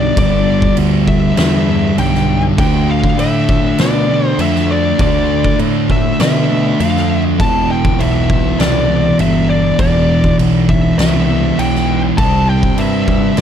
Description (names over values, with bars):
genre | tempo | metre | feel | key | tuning
stoner and doom metal | 100 BPM | 4/4 | straight | E phrygian | A4 = 440 Hz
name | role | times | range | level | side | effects
fuzz lead guitar | melody | 0.0-13.4 s | D5 to A5 | -19 LUFS | left 2 dB | distortion, analog delay
thick fuzz guitar | riff | 0.0-13.4 s | E2 to D4 | -17 LUFS | left 10 dB | distortion
thick fuzz guitar | riff | 0.0-13.4 s | E2 to D4 | -17 LUFS | right 10 dB | distortion
growling picked electric bass | bass | 0.0-13.4 s | E1 to B2 | -18 LUFS | equal | overdrive
oversized low-tuned drum kit | drums | 0.2-13.4 s | crash cymbal, kick drum, snare drum | -18 LUFS | equal | none
room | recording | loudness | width
studio reverb | dark, warm production | -11 LUFS | side -9 dB against mid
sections
0.0-13.4 A section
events
none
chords
0.0 G; 2.6 Dm; 7.4 E5; 12.2 C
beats
| 0.18 0.78 1.38 1.99 | 2.59 3.19 3.79 4.39 | 5.00 5.59 6.20 6.79 | 7.39 7.99 8.59 9.19 | 9.79 10.39 10.98 11.58 | 12.18 12.78 13.38